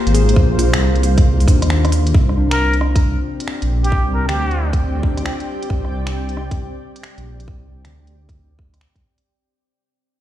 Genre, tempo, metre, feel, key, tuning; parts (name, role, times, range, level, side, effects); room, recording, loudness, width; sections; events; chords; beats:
future garage; 135 BPM; 4/4; swing 65% on 16ths; A4 = 441 Hz
tine electric piano; accompaniment; 0.0-5.8 s; D4 to C5; -25 LUFS; left 3 dB; vintage 12-bit sampler grit, sidechain pumping, tape echo
granular cloud pad; sustained chords; 0.0-9.3 s; Bb3 to G5; -25 LUFS; left 1 dB; built-in reverb, sidechain pumping
dark detuned saw bass; bass; 0.1-8.8 s; Ab1 to Eb2; -17 LUFS; equal; sidechain pumping
organic electronic drum kit; drums; 0.1-9.2 s; finger snaps, hi-hat, rim click; -26 LUFS; equal; small room reverb
electronic kick drum; drums; 0.4-9.0 s; -15 LUFS; equal; small room reverb
trumpet with plunger mute; melody; 2.5-4.7 s; G4 to Bb4; -23 LUFS; equal; analog delay
digital ambience; played on a big sound system in a bare room, stone room reverb; -14 LUFS; side -12 dB against mid
0.0-2.1 A section; 2.1-9.3 B section
fade-out 2.1-9.3
0.0 Bb7sus4; 2.1 Csus2
| 0.37 0.81 1.26 1.70 | 2.15 2.59 3.03 3.48 | 3.92 4.37 4.81 5.26 | 5.70 6.14 6.59 7.03 | 7.48 7.92 8.37 8.81